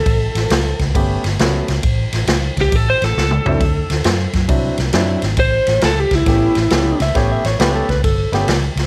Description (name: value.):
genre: electric blues shuffle.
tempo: 136 BPM.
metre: 4/4.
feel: swing 66% on 8ths.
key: A mixolydian.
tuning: A4 = 441 Hz.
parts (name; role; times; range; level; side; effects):
lightly driven lead guitar; melody; 0.0-7.0 s; E4 to C5; -20 LUFS; equal; none.
vintage muted fingered electric bass; bass; 0.0-8.9 s; G1 to F#2; -21 LUFS; equal; none.
swinging big-band drum kit; drums; 0.1-8.8 s; kick drum, ride cymbal, snare drum, toms; -21 LUFS; equal; none.
clear upright piano; accompaniment; 0.9-8.5 s; F#3 to G4; -24 LUFS; equal; none.
electric slide guitar; second line; 7.0-8.5 s; A4 to E5; -24 LUFS; equal; none.
room: light reverb, small room reverb.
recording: none.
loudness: -16 LUFS.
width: mono.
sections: 0.0-8.9 A section.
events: drum fill 3.2-3.6.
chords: 0.0 A9; 3.6 D9; 5.4 A9.